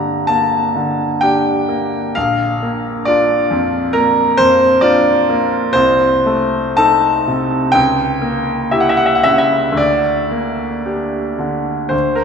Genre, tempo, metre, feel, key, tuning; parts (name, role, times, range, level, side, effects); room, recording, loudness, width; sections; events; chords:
classical, romantic nocturne for solo piano; 55-69 BPM; 4/4; rubato; G minor; A4 = 440 Hz
bright grand piano; solo; 0.0-12.2 s; Bb1 to Bb5; -12 LUFS; equal
wet church reverb, RT60 4.0 s; recorded in a church or concert hall; -13 LUFS; side -6 dB against mid
0.0-12.2 A section
0.0 Gm; 2.2 Bb; 5.8 Adim/C; 7.8 C#dim7; 9.8 Gm/D